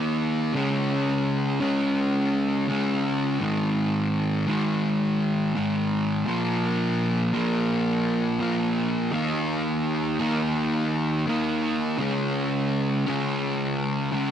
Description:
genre	rock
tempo	84 BPM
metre	4/4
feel	straight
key	unclear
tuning	A4 = 440 Hz
part	fuzz guitar	solo	0.0-14.3 s	Ab2 to Eb4	-22 LUFS	equal	distortion
room	light reverb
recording	none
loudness	-22 LUFS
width	side -9 dB against mid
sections	0.0-14.3 A section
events	none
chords	0.0 Eb5; 0.5 Db5; 3.4 Ab5; 6.3 Bb5; 9.1 Eb5; 12.0 Db5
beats	| 0.55 1.26 1.98 2.69 | 3.40 4.12 4.83 5.55 | 6.27 6.98 7.70 8.41 | 9.13 9.85 10.56 11.28 | 11.99 12.71 13.42 14.14

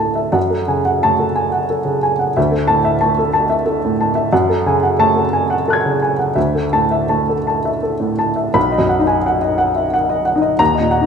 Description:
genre	neoclassical minimalist piano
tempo	80-94 BPM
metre	3/4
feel	rubato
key	unclear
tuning	A4 = 439 Hz
part	warm upright piano	solo	0.0-11.1 s	B1 to G#6	-14 LUFS	equal	none
room	moderate recital hall reverb, RT60 1.6 s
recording	recorded in a church or concert hall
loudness	-14 LUFS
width	side -6 dB against mid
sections	0.0-8.6 A section; 8.6-11.1 B section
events	none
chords	0.4 F#madd9; 2.4 Dsus2; 4.3 F#madd9; 6.4 Dsus2; 8.6 B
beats	| 0.36 1.05 1.72 | 2.37 3.02 3.67 | 4.31 4.97 5.65 | 6.36 7.09 7.82 | 8.55 9.25 9.93 | 10.60

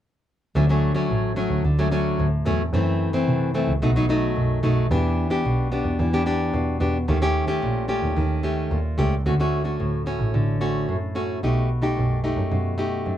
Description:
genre	samba and choro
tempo	110 BPM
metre	4/4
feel	straight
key	D major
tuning	A4 = 438 Hz
part	nylon-string guitar	accompaniment	0.6-13.2 s	F#2 to G4	-23 LUFS	left 1 dB	none
part	rich double bass	bass	0.6-13.2 s	A1 to C3	-23 LUFS	right 1 dB	none
room	light reverb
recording	none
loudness	-20 LUFS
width	side -11 dB against mid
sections	0.5-9.3 A section; 9.3-13.2 B section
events	none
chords	0.5 Dmaj7; 2.7 F#m7b5; 3.8 B7; 4.9 Em7; 7.1 Eb7#11; 9.3 Dmaj7; 11.4 B7b13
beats	| 0.55 1.09 1.64 2.18 | 2.73 3.27 3.82 4.36 | 4.91 5.45 5.99 6.54 | 7.08 7.62 8.17 8.71 | 9.25 9.80 10.34 10.88 | 11.43 11.97 12.51 13.06

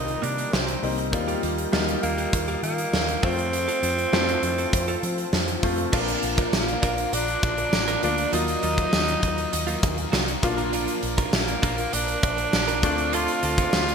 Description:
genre	1980s-style pop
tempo	100 BPM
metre	4/4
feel	straight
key	Bb major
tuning	A4 = 441 Hz
part	raspy tenor saxophone	melody	0.0-13.9 s	Bb3 to F4	-27 LUFS	right 1 dB	none
part	clear baby grand piano	accompaniment	0.0-13.9 s	F3 to F4	-30 LUFS	left 2 dB	none
part	soft string machine	sustained chords	0.0-13.9 s	Eb3 to Eb6	-34 LUFS	left 1 dB	ensemble chorus
part	vintage muted fingered electric bass	bass	0.0-13.9 s	A1 to F3	-31 LUFS	equal	none
part	direct-recorded clean electric guitar	riff	0.1-13.9 s	Gb3 to Bb4	-34 LUFS	right 5 dB	wide subtle chorus
part	big rock drum kit	drums	0.1-13.9 s	crash cymbal, hi-hat, kick drum, snare drum, tambourine	-26 LUFS	right 1 dB	gated reverb
part	distorted electric guitar	accompaniment	5.9-13.9 s	Bb2 to Eb4	-35 LUFS	left 6 dB	overdrive, analog chorus
room	moderate plate reverb, RT60 1.9 s, studio ambience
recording	bright 1980s-style digital production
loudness	-21 LUFS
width	side -6 dB against mid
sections	0.0-5.9 A section; 5.9-13.9 B section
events	none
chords	0.0 Cm7; 1.1 Ebadd9; 3.2 F; 5.9 Bb; 8.3 Ebmadd9; 10.4 Bb; 12.8 Dm7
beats	0.53 | 1.13 1.73 2.33 2.93 | 3.53 4.13 4.73 5.33 | 5.93 6.53 7.13 7.73 | 8.33 8.93 9.53 10.13 | 10.73 11.33 11.93 12.53 | 13.13 13.73

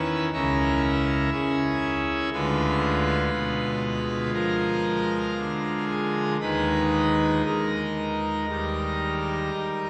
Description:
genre	classical, chorale-style piece for pipe organ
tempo	58 BPM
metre	4/4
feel	straight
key	unclear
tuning	A4 = 440 Hz
part	pipe organ, full organ	solo	0.0-9.9 s	C#2 to B4	-25 LUFS	equal	none
room	wet cathedral reverb, RT60 7.5 s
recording	recorded in a church or concert hall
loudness	-25 LUFS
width	mono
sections	0.0-9.9 A section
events	none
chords	0.3 C#m; 2.3 Ddim7; 6.4 D#sus4; 8.5 D#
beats	0.32 1.32 | 2.33 3.33 4.34 5.37 | 6.41 7.45 8.49 9.53

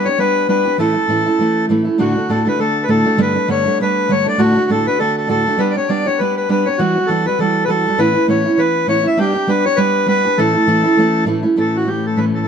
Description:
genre	celtic folk, Celtic reel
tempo	200 BPM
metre	4/4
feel	swing 57% on 8ths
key	A mixolydian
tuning	A4 = 440 Hz
part	accordion	melody	0.0-12.5 s	F#4 to E5	-16 LUFS	left 2 dB	plate reverb
part	fingerpicked steel-string acoustic guitar	accompaniment	0.0-12.5 s	D2 to G4	-16 LUFS	right 2 dB	none
part	dark cello	drone	11.6-12.5 s	A2	-22 LUFS	left 5 dB	none
room	moderate studio reverb, RT60 0.9 s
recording	dark, warm production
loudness	-13 LUFS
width	side -7 dB against mid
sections	0.0-2.0 A section; 2.0-11.6 A section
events	none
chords	0.0 G; 0.8 A; 2.0 D; 3.2 Gadd9; 4.4 D; 5.6 G; 6.8 Emadd9; 8.0 Aadd9; 9.2 G; 10.4 A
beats	0.19 0.49 | 0.80 1.10 1.40 1.70 | 2.00 2.30 2.60 2.90 | 3.20 3.50 3.80 4.10 | 4.40 4.70 5.00 5.30 | 5.60 5.90 6.20 6.50 | 6.79 7.09 7.39 7.69 | 7.99 8.29 8.59 8.89 | 9.19 9.49 9.79 10.09 | 10.39 10.69 10.99 11.29 | 11.59 11.89 12.19

